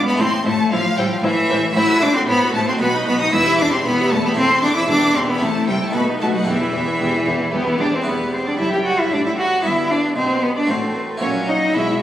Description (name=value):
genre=classical, baroque-style concerto movement with solo episodes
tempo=115 BPM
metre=3/4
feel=straight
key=E minor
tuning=A4 = 440 Hz
part: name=rich cello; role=melody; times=0.0-12.0 s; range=E3 to G4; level=-18 LUFS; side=left 1 dB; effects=none
part: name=harpsichord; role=accompaniment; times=0.0-12.0 s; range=E2 to E5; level=-27 LUFS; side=equal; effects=none
part: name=rich chamber violin section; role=melody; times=0.1-12.0 s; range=G4 to E6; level=-25 LUFS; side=left 1 dB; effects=none
part: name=rich chamber violin section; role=second line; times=0.2-12.0 s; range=G4 to G5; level=-27 LUFS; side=equal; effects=none
part: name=warm chamber viola section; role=accompaniment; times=0.2-12.0 s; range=F#3 to G4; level=-25 LUFS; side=right 2 dB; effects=none
part: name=rich chamber cello section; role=bass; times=0.2-12.0 s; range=E2 to C3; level=-28 LUFS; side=right 1 dB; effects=none
part: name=rich chamber double bass section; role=bass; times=0.2-12.0 s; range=E1 to C2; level=-30 LUFS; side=right 2 dB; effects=none
room=wet recital hall reverb, RT60 1.6 s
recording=recorded on a phone in the room, club reverb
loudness=-15 LUFS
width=side -12 dB against mid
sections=0.0-8.1 A section; 8.1-12.0 B section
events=none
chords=0.2 Am; 1.8 F#m7b5/A; 2.8 B; 3.3 Em; 4.4 Am/E; 4.9 Em; 5.4 Am/C; 5.9 B7; 6.5 Em; 9.6 Em/G; 10.7 F#dim/A; 11.2 F#7/A#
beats=| 0.19 0.71 1.24 | 1.76 2.28 2.80 | 3.33 3.85 4.37 | 4.89 5.42 5.95 | 6.48 7.01 7.54 | 8.07 8.60 9.12 | 9.65 10.17 10.69 | 11.21 11.74